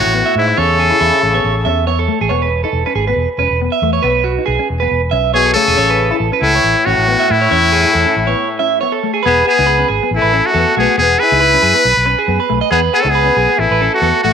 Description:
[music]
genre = highlife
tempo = 138 BPM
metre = 4/4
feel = swing 55% on 16ths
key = E major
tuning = A4 = 440 Hz
[part]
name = trumpet with metal mute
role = melody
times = 0.0-1.9, 5.3-14.3 s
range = E4 to B4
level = -13 LUFS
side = left 1 dB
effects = none
[part]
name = edgy tenor saxophone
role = second line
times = 0.0-1.9, 5.4-14.3 s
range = G#2 to E4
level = -19 LUFS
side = left 10 dB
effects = none
[part]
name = mellow electric guitar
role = accompaniment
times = 0.0-14.3 s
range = A3 to E4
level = -24 LUFS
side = left 12 dB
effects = wide subtle chorus
[part]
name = electric guitar at the edge of break-up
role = arpeggios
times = 0.0-14.3 s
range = E4 to E5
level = -17 LUFS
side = right 9 dB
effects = slapback echo
[part]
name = fingered electric bass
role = bass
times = 0.1-14.3 s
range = E1 to A2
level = -18 LUFS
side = equal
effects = none
[sound]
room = wet spring reverb, RT60 1.4 s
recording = 1960s-style stereo with parts hard left and right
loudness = -11 LUFS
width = side -7 dB against mid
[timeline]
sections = 0.0-9.2 A section; 9.2-14.3 B section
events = break 8.4-9.2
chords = 0.0 A; 2.3 E; 5.8 A; 9.2 E; 10.1 A; 11.0 E; 11.9 Bsus2; 12.7 E; 13.6 A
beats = 0.14 | 0.57 1.01 1.44 1.87 | 2.31 2.74 3.17 3.61 | 4.04 4.48 4.91 5.34 | 5.78 6.21 6.64 7.08 | 7.51 7.95 8.38 8.81 | 9.25 9.68 10.12 10.55 | 10.98 11.42 11.85 12.29 | 12.72 13.15 13.59 14.02

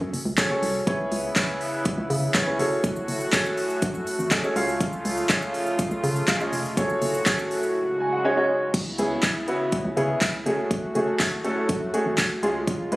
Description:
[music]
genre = dance-pop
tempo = 122 BPM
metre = 4/4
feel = straight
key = unclear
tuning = A4 = 439 Hz
[part]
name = warm baby grand piano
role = accompaniment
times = 0.0-13.0 s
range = G#3 to G#5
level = -26 LUFS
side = equal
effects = sidechain pumping
[part]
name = organ-like FM bass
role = bass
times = 0.0-13.0 s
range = E#1 to C#3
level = -30 LUFS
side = equal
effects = sidechain pumping
[part]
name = deep house drum kit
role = drums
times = 0.1-13.0 s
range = crash cymbal, handclaps, hi-hat, kick drum, shaker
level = -26 LUFS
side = equal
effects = none
[part]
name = tambourine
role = percussion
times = 0.4-12.3 s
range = none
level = -35 LUFS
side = left 1 dB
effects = none
[part]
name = chorused pulse-width pad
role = sustained chords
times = 0.9-13.0 s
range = A2 to F#4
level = -29 LUFS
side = equal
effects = sidechain pumping
[sound]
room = light reverb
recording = recorded on a phone in the room, studio reverb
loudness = -22 LUFS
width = side -19 dB against mid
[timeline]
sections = 0.0-8.7 A section; 8.7-13.0 B section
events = drums muted 7.8-8.7; grand piano fill 7.8-8.7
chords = 0.0 F#madd9; 0.9 C#m7; 2.6 F#madd9; 4.6 C#; 6.8 F#madd9; 7.8 G#7sus4; 8.7 C#m7; 10.5 F#madd9; 12.4 C#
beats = 0.38 | 0.87 1.36 1.85 2.35 | 2.84 3.33 3.82 4.31 | 4.81 5.30 5.79 6.28 | 6.77 7.26 7.76 8.25 | 8.74 9.23 9.72 10.21 | 10.71 11.20 11.69 12.18 | 12.67

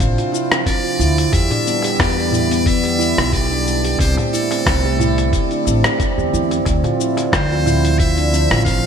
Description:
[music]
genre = organic downtempo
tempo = 90 BPM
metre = 4/4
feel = swing 54% on 16ths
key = D dorian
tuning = A4 = 444 Hz
[part]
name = warbly tape-like pad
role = sustained chords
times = 0.0-8.9 s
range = C3 to D5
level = -23 LUFS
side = right 1 dB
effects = chorus, built-in reverb, sidechain pumping
[part]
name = handpan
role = arpeggios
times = 0.0-8.8 s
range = B3 to G4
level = -20 LUFS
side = right 2 dB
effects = ping-pong delay
[part]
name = upright bass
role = bass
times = 0.0-8.9 s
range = A1 to E2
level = -19 LUFS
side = left 1 dB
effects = sidechain pumping
[part]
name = dusty soul sampler-style drum kit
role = drums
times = 0.0-8.8 s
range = cabasa, hi-hat, rim click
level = -22 LUFS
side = left 2 dB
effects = gated reverb
[part]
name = electronic kick drum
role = drums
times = 0.0-8.8 s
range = none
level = -20 LUFS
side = equal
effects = none
[part]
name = darbuka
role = percussion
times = 0.3-8.5 s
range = none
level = -27 LUFS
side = left 3 dB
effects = none
[part]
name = trumpet with metal mute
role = melody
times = 0.7-8.9 s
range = A4 to F5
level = -23 LUFS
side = left 1 dB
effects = ping-pong delay
[sound]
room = light reverb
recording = bright 1980s-style digital production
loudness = -14 LUFS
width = side -7 dB against mid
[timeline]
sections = 0.0-8.9 A section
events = none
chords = 0.0 Dm9; 1.3 Em7; 4.0 C69; 6.7 Dm9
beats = 0.00 0.66 | 1.33 2.00 2.66 3.33 | 4.00 4.66 5.33 6.00 | 6.66 7.33 8.00 8.66

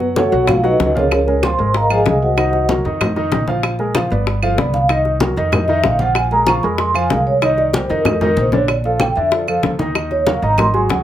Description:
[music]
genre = Afro-Cuban jazz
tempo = 190 BPM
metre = 4/4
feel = straight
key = Bb minor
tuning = A4 = 441 Hz
[part]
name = vibraphone with soft mallets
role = melody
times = 0.0-11.0 s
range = Cb4 to Db6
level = -16 LUFS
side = right 1 dB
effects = none
[part]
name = warm grand piano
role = accompaniment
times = 0.0-11.0 s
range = D3 to Gb5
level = -21 LUFS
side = right 1 dB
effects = none
[part]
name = upright bass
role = bass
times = 0.0-11.0 s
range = G1 to Gb2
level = -21 LUFS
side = equal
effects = none
[part]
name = bongos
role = percussion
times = 0.0-11.0 s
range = none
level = -22 LUFS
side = left 6 dB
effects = none
[part]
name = congas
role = percussion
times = 0.0-11.0 s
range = none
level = -22 LUFS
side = left 1 dB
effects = none
[part]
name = claves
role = percussion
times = 0.5-10.7 s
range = none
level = -24 LUFS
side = right 5 dB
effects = none
[sound]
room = moderate club reverb, RT60 0.5 s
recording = none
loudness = -13 LUFS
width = side -11 dB against mid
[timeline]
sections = 0.0-8.7 A section; 8.7-11.0 A section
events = vibraphone solo 0.0-11.0; drum fill 8.1-8.7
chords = 0.5 B9; 1.1 Db69; 2.4 Cm7b5; 3.0 Bbsus4; 3.6 Bb5; 4.3 G7; 4.9 Cm7b5; 5.5 Ebmadd9; 6.2 Bbsus2; 7.4 Cm7; 8.1 Bbadd11; 8.7 Bbmaj7; 10.0 Ebmadd11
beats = 0.17 0.48 0.80 | 1.11 1.43 1.75 2.06 | 2.38 2.69 3.01 3.32 | 3.64 3.95 4.27 4.58 | 4.90 5.22 5.53 5.85 | 6.16 6.48 6.79 7.11 | 7.43 7.74 8.06 8.37 | 8.69 9.01 9.32 9.64 | 9.95 10.27 10.58 10.90

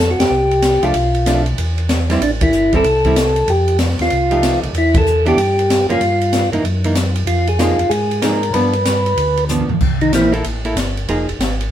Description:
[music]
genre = soul jazz organ trio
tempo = 190 BPM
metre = 4/4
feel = swing 64% on 8ths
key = unclear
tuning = A4 = 439 Hz
[part]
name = percussive tonewheel organ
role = melody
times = 0.0-10.3 s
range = Eb3 to B4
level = -16 LUFS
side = equal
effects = slow rotary speaker
[part]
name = mellow tonewheel organ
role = bass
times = 0.0-11.7 s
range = F1 to Ab2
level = -19 LUFS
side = equal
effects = slow rotary speaker
[part]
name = open jazz drum kit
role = drums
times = 0.0-11.7 s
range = crash cymbal, hi-hat, kick drum, ride cymbal, snare drum, toms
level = -20 LUFS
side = equal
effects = none
[part]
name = archtop guitar, miked and amplified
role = accompaniment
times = 0.8-11.3 s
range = E3 to A4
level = -20 LUFS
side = right 2 dB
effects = none
[sound]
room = moderate studio reverb, RT60 0.8 s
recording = band playing live in one room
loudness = -13 LUFS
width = side -11 dB against mid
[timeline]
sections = 0.0-9.8 A section; 9.8-11.7 B section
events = band accent 0.1, 2.4, 4.9; drum fill 9.5-9.8; tonewheel organ solo 9.8-11.7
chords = 0.0 F; 0.9 Bm7b5; 1.6 Em; 2.2 Am7; 3.5 F9; 4.7 Em; 6.0 Gm7; 6.6 F#6; 7.3 Fm7; 8.5 G7; 9.8 C6; 11.1 Fm7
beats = 0.31 0.62 | 0.94 1.26 1.58 1.89 | 2.21 2.53 2.84 3.16 | 3.48 3.79 4.11 4.43 | 4.74 5.06 5.38 5.69 | 6.01 6.33 6.64 6.96 | 7.28 7.59 7.91 8.23 | 8.54 8.86 9.18 9.49 | 9.81 10.12 10.44 10.76 | 11.07 11.39

